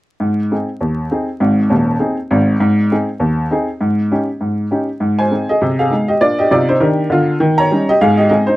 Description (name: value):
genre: jazz, stride piano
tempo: 200 BPM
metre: 4/4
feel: swing 59% on 8ths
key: Ab major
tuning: A4 = 443 Hz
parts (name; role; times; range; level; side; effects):
- clear upright piano; solo; 0.2-8.6 s; Eb1 to Bb5; -13 LUFS; equal; none
room: light reverb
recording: dry, close 1970s-style studio recording, vinyl crackle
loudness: -13 LUFS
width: side -17 dB against mid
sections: 0.2-5.0 A section; 5.0-8.6 B section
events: none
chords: 0.2 Ab; 3.8 Eb7/Ab; 5.0 Ab; 5.6 Ab/C; 6.2 Bb; 7.4 Eb7; 8.0 Ab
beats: | 0.22 0.51 0.81 1.11 | 1.41 1.71 2.01 2.31 | 2.61 2.91 3.21 3.51 | 3.81 4.11 4.41 4.71 | 5.00 5.30 5.60 5.90 | 6.20 6.50 6.80 7.10 | 7.40 7.70 8.00 8.30